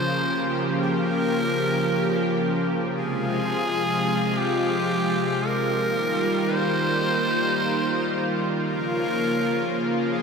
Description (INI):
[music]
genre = synthwave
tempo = 84 BPM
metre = 4/4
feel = straight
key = Bb dorian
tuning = A4 = 440 Hz
[part]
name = growling tenor saxophone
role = melody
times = 0.0-10.2 s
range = G4 to C5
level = -26 LUFS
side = equal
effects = analog delay
[part]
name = lush unison pad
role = sustained chords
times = 0.0-10.2 s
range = C3 to G4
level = -23 LUFS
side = equal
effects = chorus
[sound]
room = wet huge ambient reverb, RT60 8.8 s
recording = dreamy mix soaked in reverb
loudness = -21 LUFS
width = side -5 dB against mid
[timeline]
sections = 0.0-10.2 A section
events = none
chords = 0.0 Bbm; 3.0 Fm; 5.8 Ebadd9; 8.7 Bbm